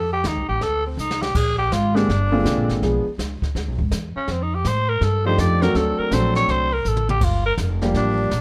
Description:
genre	jazz, small-group swing and bop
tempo	164 BPM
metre	4/4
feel	swing 65% on 8ths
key	F mixolydian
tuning	A4 = 438 Hz
part	growling tenor saxophone	second line	0.0-8.4 s	C4 to D5	-25 LUFS	equal	none
part	upright bass	bass	0.0-8.4 s	F1 to A2	-25 LUFS	equal	none
part	jazz brush drum kit	drums	0.2-8.4 s	brushed snare drum, crash cymbal, hi-hat, kick drum, snare drum, toms	-29 LUFS	equal	none
part	warm concert grand piano	accompaniment	1.9-3.0, 5.3-8.3 s	D3 to A4	-24 LUFS	equal	none
room	light reverb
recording	dark, warm production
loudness	-21 LUFS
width	mono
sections	0.0-8.4 A section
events	tenor saxophone solo 0.0-8.4; drum fill 1.0-1.4, 6.8-7.2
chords	0.0 F13; 1.4 Bb13; 2.8 Bdim7; 4.3 F13; 5.8 D7; 7.2 Gm7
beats	0.25 0.62 0.98 | 1.35 1.72 2.08 2.45 | 2.82 3.19 3.55 3.92 | 4.28 4.65 5.02 5.38 | 5.75 6.12 6.48 6.85 | 7.22 7.58 7.95 8.31

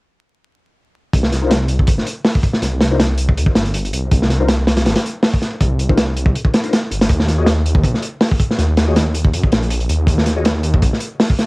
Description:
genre	drum and bass, jungle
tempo	161 BPM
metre	4/4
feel	swing 54% on 16ths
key	unclear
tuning	A4 = 440 Hz
part	detuned saw bass	bass	1.1-10.9 s	G1 to Gb2	-17 LUFS	equal	none
part	crunchy breakbeat drum kit	drums	1.1-11.5 s	hi-hat, kick drum, snare drum	-15 LUFS	equal	cassette tape
part	mellow tonewheel organ	stabs	1.4-10.5 s	D4 to Eb5	-24 LUFS	left 3 dB	chorus vibrato, slow rotary speaker, low-pass filter, cassette tape, dub echo
room	light reverb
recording	home recording on cassette, vinyl crackle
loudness	-13 LUFS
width	side -25 dB against mid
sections	1.1-11.5 A section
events	filter sweep on tonewheel organ 1.1-11.5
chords	1.1 N.C.; 7.1 Eb5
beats	| 1.13 1.51 1.88 2.25 | 2.62 3.00 3.37 3.74 | 4.12 4.49 4.86 5.23 | 5.61 5.98 6.35 6.72 | 7.10 7.47 7.84 8.21 | 8.59 8.96 9.33 9.71 | 10.08 10.45 10.82 11.20

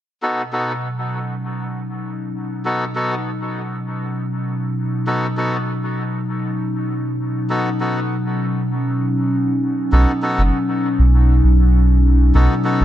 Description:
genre	ambient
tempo	99 BPM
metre	4/4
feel	straight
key	B mixolydian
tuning	A4 = 441 Hz
part	warbly tape-like pad	sustained chords	0.5-12.8 s	B2 to D#4	-20 LUFS	left 1 dB	chorus, built-in reverb
part	melodica	stabs	0.2-12.8 s	B3 to A4	-24 LUFS	equal	low-pass filter, dub echo
part	soft dub sub bass	bass	9.9-12.8 s	F#1 to B1	-12 LUFS	equal	none
room	light reverb, small room ambience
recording	none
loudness	-17 LUFS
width	side -12 dB against mid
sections	0.2-12.8 A section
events	filter sweep on ambient pad 0.2-12.8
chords	0.2 B7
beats	| 0.23 0.83 1.44 2.04 | 2.65 3.26 3.86 4.47 | 5.07 5.68 6.29 6.89 | 7.50 8.11 8.71 9.32 | 9.92 10.53 11.13 11.74 | 12.35

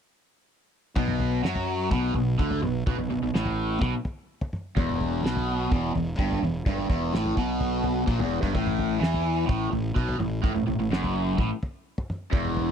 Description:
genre	psychedelic rock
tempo	127 BPM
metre	4/4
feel	straight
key	unclear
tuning	A4 = 439 Hz
part	overdriven electric guitar	riff	1.0-12.7 s	E2 to F#3	-26 LUFS	equal	phaser
part	fuzz fingered electric bass	bass	1.0-12.7 s	E1 to F#2	-30 LUFS	equal	overdrive
part	cloth-damped thuddy drum kit	drums	1.0-12.7 s	kick drum, snare drum, toms	-28 LUFS	equal	none
room	little or no reverb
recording	dry, close 1970s-style studio recording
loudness	-24 LUFS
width	side -8 dB against mid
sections	1.0-12.7 A section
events	none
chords	1.0 B5; 4.8 E5; 8.5 A5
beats	| 0.96 1.44 1.91 2.39 | 2.86 3.34 3.81 4.29 | 4.76 5.23 5.71 6.18 | 6.65 7.12 7.60 8.07 | 8.54 9.02 9.49 9.96 | 10.43 10.91 11.38 11.85 | 12.32

